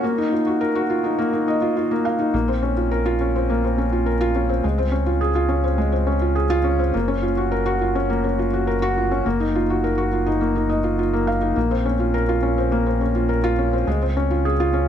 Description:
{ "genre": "piano and strings electronica", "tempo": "104 BPM", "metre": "4/4", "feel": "straight", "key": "Bb minor", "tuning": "A4 = 440 Hz", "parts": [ { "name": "felt-muted upright piano", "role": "riff", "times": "0.0-14.9 s", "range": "Ab3 to F5", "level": "-20 LUFS", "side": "left 1 dB", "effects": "ping-pong delay" }, { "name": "round analog bass", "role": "bass", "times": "2.3-14.9 s", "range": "Gb1 to Db2", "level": "-23 LUFS", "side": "right 1 dB", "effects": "high-pass filter" } ], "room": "wet recital hall reverb, RT60 1.7 s, studio ambience", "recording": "none", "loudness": "-18 LUFS", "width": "side -9 dB against mid", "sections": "0.0-2.3 A section; 2.3-14.9 B section", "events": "build-up 0.0-2.3; break 0.0-2.3; drop 2.3-14.9", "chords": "0.0 Ebmadd9; 2.3 Bbmadd9; 4.6 Dbmaj7; 6.9 Gbmaj7; 9.3 Ebmadd9/Gb; 11.6 Bbmadd9; 13.9 Dbmaj7" }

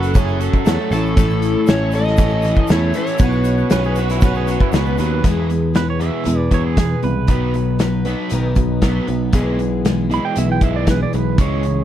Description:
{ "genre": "folk rock and heartland rock", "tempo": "118 BPM", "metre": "4/4", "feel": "straight", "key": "E major", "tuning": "A4 = 439 Hz", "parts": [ { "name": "overdriven slide guitar", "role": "melody", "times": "0.0-4.7 s", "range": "A4 to D#5", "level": "-24 LUFS", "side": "left 1 dB", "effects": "none" }, { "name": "pedal steel guitar", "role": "second line", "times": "0.0-11.8 s", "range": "E4 to B5", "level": "-26 LUFS", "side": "right 10 dB", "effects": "none" }, { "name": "bright upright piano", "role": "accompaniment", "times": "0.0-5.2 s", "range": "E4 to C#5", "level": "-30 LUFS", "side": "right 7 dB", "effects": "none" }, { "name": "picked steel-string acoustic guitar", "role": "accompaniment", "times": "0.0-11.8 s", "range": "A2 to B4", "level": "-24 LUFS", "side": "left 5 dB", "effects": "none" }, { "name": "bright tonewheel organ", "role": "sustained chords", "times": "0.0-5.2 s", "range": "E4 to C#6", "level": "-32 LUFS", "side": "equal", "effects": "slow rotary speaker, chorus vibrato" }, { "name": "overdriven electric guitar", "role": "riff", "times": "0.0-11.8 s", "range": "E2 to A4", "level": "-22 LUFS", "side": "right 1 dB", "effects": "spring reverb" }, { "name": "picked electric bass", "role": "bass", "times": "0.0-11.8 s", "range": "F#1 to E2", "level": "-19 LUFS", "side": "equal", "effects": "none" }, { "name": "loose indie drum kit", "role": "drums", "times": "0.0-11.8 s", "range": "hi-hat, kick drum, snare drum", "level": "-18 LUFS", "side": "equal", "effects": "none" }, { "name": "tube shaker", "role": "percussion", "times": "0.0-5.1 s", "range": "none", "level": "-43 LUFS", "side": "left 28 dB", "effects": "none" } ], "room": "little or no reverb", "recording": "none", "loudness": "-15 LUFS", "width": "side -11 dB against mid", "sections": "0.0-5.3 A section; 5.3-11.8 B section", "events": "pedal steel guitar solo 5.3-11.8", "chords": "0.0 F#m; 0.9 A; 3.2 Bsus2; 5.3 E; 7.3 B; 9.3 E/B" }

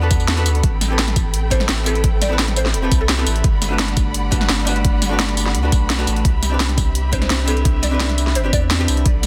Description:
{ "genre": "liquid drum and bass", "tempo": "171 BPM", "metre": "4/4", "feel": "straight", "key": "unclear", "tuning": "A4 = 439 Hz", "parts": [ { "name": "archtop guitar, miked and amplified", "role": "accompaniment", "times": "0.0-9.1 s", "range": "A3 to B4", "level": "-27 LUFS", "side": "equal", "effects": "digital delay" }, { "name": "dark symphonic string section", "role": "sustained chords", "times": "0.0-9.3 s", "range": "G3 to B5", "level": "-31 LUFS", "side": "equal", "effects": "sidechain pumping" }, { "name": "warm sub bass", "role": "bass", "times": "0.0-9.3 s", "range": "E1 to E2", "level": "-22 LUFS", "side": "equal", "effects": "none" }, { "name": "drum and bass drum kit", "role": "drums", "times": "0.1-9.3 s", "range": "hi-hat, snare drum, tambourine", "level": "-24 LUFS", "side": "equal", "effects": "overdrive" }, { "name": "electronic kick drum", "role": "drums", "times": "0.1-9.1 s", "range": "none", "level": "-20 LUFS", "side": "equal", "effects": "overdrive" }, { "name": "mallet-like synth pluck", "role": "melody", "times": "1.5-3.5, 7.1-9.0 s", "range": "G4 to D5", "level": "-29 LUFS", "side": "equal", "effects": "ensemble chorus, dub echo" } ], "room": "light reverb, digital ambience", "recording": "dense, heavily limited modern master", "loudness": "-18 LUFS", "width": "mono", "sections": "0.0-9.3 A section", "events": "none", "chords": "0.0 Bm7; 0.6 Am9; 3.4 Gmaj7; 6.2 Cmaj7" }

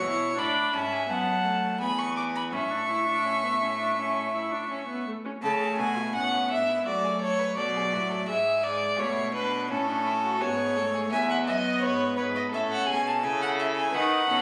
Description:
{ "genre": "classical, baroque-style fugue for string quartet", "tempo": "84 BPM", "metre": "4/4", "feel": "straight", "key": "A major", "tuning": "A4 = 440 Hz", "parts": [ { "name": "warm violin", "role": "melody", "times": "0.0-14.4 s", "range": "A4 to D6", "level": "-30 LUFS", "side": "equal", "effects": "none" }, { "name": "dark violin", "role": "second line", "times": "0.0-14.4 s", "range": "C#4 to G#5", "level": "-34 LUFS", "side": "equal", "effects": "none" }, { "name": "warm viola", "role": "accompaniment", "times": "0.0-14.4 s", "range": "F#3 to E4", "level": "-34 LUFS", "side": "equal", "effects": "none" }, { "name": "rich cello", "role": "bass", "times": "0.0-14.4 s", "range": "E2 to D#3", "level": "-36 LUFS", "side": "equal", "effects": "none" } ], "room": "moderate recital hall reverb, RT60 1.7 s", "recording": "recorded on a phone in the room, club reverb", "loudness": "-27 LUFS", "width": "mono", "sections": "0.0-5.4 A section; 5.4-14.4 B section", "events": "none", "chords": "0.0 E7; 1.1 F#m; 1.8 E; 2.5 A; 6.9 D/F#; 8.3 E7/G#; 9.7 A; 11.1 E; 12.5 A" }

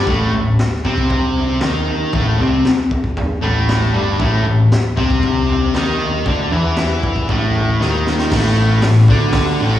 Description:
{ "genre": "garage rock duo or trio", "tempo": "116 BPM", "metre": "4/4", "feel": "straight", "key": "unclear", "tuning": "A4 = 440 Hz", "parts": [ { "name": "fuzz guitar", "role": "riff", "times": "0.0-9.8 s", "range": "G2 to E4", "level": "-16 LUFS", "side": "left 1 dB", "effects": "distortion, slapback echo" }, { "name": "growling picked electric bass", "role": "bass", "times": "0.0-9.8 s", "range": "G1 to E2", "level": "-18 LUFS", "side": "left 1 dB", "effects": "overdrive" }, { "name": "raw garage drum kit", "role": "drums", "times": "0.1-9.5 s", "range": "crash cymbal, hi-hat, kick drum, snare drum, toms", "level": "-19 LUFS", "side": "equal", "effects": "none" } ], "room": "little or no reverb", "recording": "live gig heard through the venue's PA, recital hall reverb, small room ambience", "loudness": "-13 LUFS", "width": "side -12 dB against mid", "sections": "0.0-8.3 A section; 8.3-9.8 B section", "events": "drum fill 7.8-8.3", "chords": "0.0 A5" }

